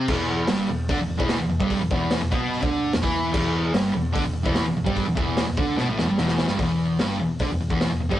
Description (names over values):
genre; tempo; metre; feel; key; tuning
garage rock duo or trio; 148 BPM; 4/4; straight; unclear; A4 = 440 Hz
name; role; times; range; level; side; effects
fuzz guitar; riff; 0.0-8.2 s; E2 to E4; -23 LUFS; equal; distortion
vintage muted picked electric bass; bass; 0.1-8.2 s; E1 to E2; -33 LUFS; equal; none
raw garage drum kit; drums; 0.1-8.2 s; crash cymbal, hi-hat, kick drum, snare drum; -26 LUFS; equal; none
room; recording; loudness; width
moderate studio reverb, RT60 0.5 s; rough rehearsal-room recording, tube saturation, nothing above 10.9 kHz; -21 LUFS; side -13 dB against mid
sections
0.1-6.6 A section; 6.6-8.2 B section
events
drum fill 5.8-6.6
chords
0.1 E5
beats
| 0.09 0.50 0.90 1.31 | 1.71 2.12 2.52 2.93 | 3.34 3.74 4.15 4.55 | 4.96 5.36 5.77 6.18 | 6.58 6.99 7.40 7.80